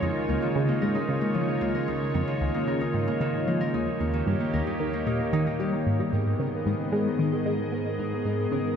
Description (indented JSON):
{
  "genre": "ambient",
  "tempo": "113 BPM",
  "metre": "4/4",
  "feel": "straight",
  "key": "unclear",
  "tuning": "A4 = 441 Hz",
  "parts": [
    { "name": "evolving wavetable pad", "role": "sustained chords", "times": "0.0-8.8 s", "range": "Eb2 to D#5", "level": "-28 LUFS", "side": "equal", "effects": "chorus, built-in reverb" },
    { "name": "Celtic harp", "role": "arpeggios", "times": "0.0-8.2 s", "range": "Eb3 to Bb4", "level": "-31 LUFS", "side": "equal", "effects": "auto-pan, tape echo" },
    { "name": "tight sequenced synth", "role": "riff", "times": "0.0-8.6 s", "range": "Db2 to B3", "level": "-28 LUFS", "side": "equal", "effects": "chorus, tape echo" },
    { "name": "pulsing gated texture", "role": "texture", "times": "6.0-8.8 s", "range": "A#4", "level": "-37 LUFS", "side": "right 4 dB", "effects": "chorus, built-in reverb" }
  ],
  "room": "wet huge ambient reverb, RT60 6.9 s",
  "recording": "none",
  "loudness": "-24 LUFS",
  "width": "side -7 dB against mid",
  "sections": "0.0-5.9 A section; 5.9-8.8 B section",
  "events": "filter sweep on synth arpeggio sound 0.0-5.9",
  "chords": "0.0 Dbadd9; 3.7 Eb7; 5.9 G#m"
}